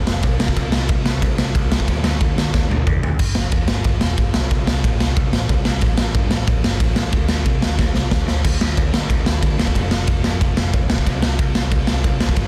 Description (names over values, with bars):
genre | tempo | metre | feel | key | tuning
punk rock | 183 BPM | 4/4 | straight | unclear | A4 = 445 Hz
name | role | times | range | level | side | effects
overdriven picked electric bass | bass | 0.0-12.5 s | E1 to D3 | -24 LUFS | equal | none
raw garage drum kit | drums | 0.1-12.4 s | crash cymbal, kick drum, ride cymbal, snare drum, toms | -20 LUFS | equal | none
room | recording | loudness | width
light reverb | dense, heavily limited modern master | -19 LUFS | mono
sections
0.0-3.2 A section; 3.2-8.4 B section; 8.4-12.5 A section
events
drum fill 2.5-3.2, 7.8-8.4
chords
none